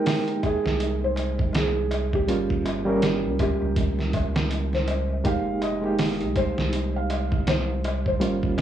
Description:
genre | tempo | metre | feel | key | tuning
trip hop | 81 BPM | 4/4 | swing 59% on 16ths | F minor | A4 = 442 Hz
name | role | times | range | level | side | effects
felt-muted upright piano | melody | 0.0-8.5 s | G4 to F5 | -29 LUFS | equal | dub echo
bright reed electric piano | accompaniment | 0.0-8.6 s | G3 to G5 | -27 LUFS | right 2 dB | fast tremolo, cassette tape, tape echo
trip hop sampler-style drum kit | drums | 0.1-8.6 s | hi-hat, kick drum, snare drum | -27 LUFS | right 1 dB | none
darbuka | percussion | 0.1-8.6 s | none | -36 LUFS | left 3 dB | none
soft dub sub bass | bass | 0.7-8.6 s | F1 to Db2 | -28 LUFS | right 1 dB | none
room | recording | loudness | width
light reverb | home recording on cassette, studio reverb | -22 LUFS | side -10 dB against mid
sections
0.0-8.6 A section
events
none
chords
0.0 Fm11 (rootless); 2.3 Gdim; 5.2 Fm11

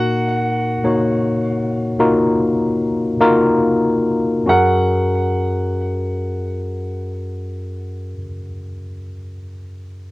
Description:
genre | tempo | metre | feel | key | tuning
pop ballad | 46-54 BPM | 4/4 | straight | F# major | A4 = 440 Hz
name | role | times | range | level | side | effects
warm baby grand piano | melody | 0.0-8.2 s | F#4 to F#5 | -22 LUFS | right 2 dB | cassette tape, tape echo
tine electric piano | accompaniment | 0.0-10.1 s | F#2 to C#5 | -17 LUFS | left 1 dB | none
room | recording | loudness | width
moderate booth ambience, RT60 0.2 s | home recording on cassette | -15 LUFS | side -19 dB against mid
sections
0.0-4.5 A section; 4.5-9.7 B section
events
slowing down 0.0-4.5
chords
0.0 D#madd9; 4.5 F#add9

